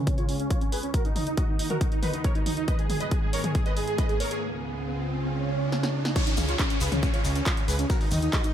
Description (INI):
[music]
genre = uplifting trance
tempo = 138 BPM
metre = 4/4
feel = straight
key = unclear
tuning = A4 = 441 Hz
[part]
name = dense compressed supersaw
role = melody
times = 0.0-8.5 s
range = C#4 to D#5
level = -32 LUFS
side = right 1 dB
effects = sidechain pumping, low-pass filter, tape echo
[part]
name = plucky unison lead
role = second line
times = 0.0-8.5 s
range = C#4 to D#5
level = -35 LUFS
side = right 2 dB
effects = lush chorus, sidechain pumping, tape echo
[part]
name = lush unison pad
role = sustained chords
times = 0.0-8.5 s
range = C#2 to A#4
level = -33 LUFS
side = right 1 dB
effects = chorus, sidechain pumping
[part]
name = riser, swell and downlifter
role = sound effects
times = 2.8-8.5 s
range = none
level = -34 LUFS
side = right 1 dB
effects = none
[part]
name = electronic kick drum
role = drums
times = 0.1-8.4 s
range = none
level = -26 LUFS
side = equal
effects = none
[part]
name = punchy analog drum machine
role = drums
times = 0.1-8.5 s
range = crash cymbal, handclaps, hi-hat, snare drum, toms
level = -32 LUFS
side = left 1 dB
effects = none
[part]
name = maracas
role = percussion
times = 6.2-8.5 s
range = none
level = -38 LUFS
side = left 4 dB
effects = none
[part]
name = fat analog bass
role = bass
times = 6.4-8.3 s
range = C#2 to D#2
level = -27 LUFS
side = equal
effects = sidechain pumping
[sound]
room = light reverb, digital ambience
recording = none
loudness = -24 LUFS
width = side -10 dB against mid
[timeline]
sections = 0.0-6.2 A section; 6.2-8.5 B section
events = build-up 0.0-6.2; filter sweep on supersaw synth 0.0-6.2; filter sweep on digital synth lead 0.0-6.2; drum fill 2.7-4.4, 5.7-6.2; riser 2.8-6.2; break 4.4-6.2; swell 5.3-6.2; drop 6.2-8.5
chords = 0.0 C#; 0.9 D#m; 2.7 G#m; 4.4 C#; 7.9 D#m